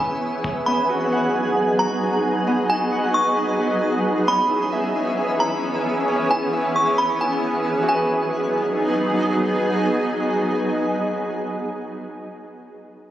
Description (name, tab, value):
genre	hip hop, atmospheric cloud-rap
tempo	133 BPM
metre	4/4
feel	half-time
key	G# minor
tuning	A4 = 440 Hz
part	delicate synth tine bell	melody	0.0-9.2 s	G#5 to C#6	-23 LUFS	equal	chorus, digital delay
part	shimmering ambient pad	sustained chords	0.0-11.8 s	E3 to G#4	-22 LUFS	right 1 dB	chorus, built-in reverb, sidechain pumping
part	Celtic harp	arpeggios	0.0-11.8 s	B3 to F#5	-27 LUFS	equal	digital delay
part	twinkling granular texture	texture	0.0-11.8 s	B3 to F#5	-30 LUFS	equal	built-in reverb
part	electronic kick drum	drums	0.4-0.5 s	none	-32 LUFS	equal	none
room	moderate huge ambient reverb, RT60 4.1 s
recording	recorded on a phone in the room, studio reverb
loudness	-19 LUFS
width	side -12 dB against mid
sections	0.0-7.9 A section; 7.9-11.5 B section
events	break 0.0-0.7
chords	0.0 C#m7; 0.7 G#m7; 4.3 C#m7; 7.9 G#m7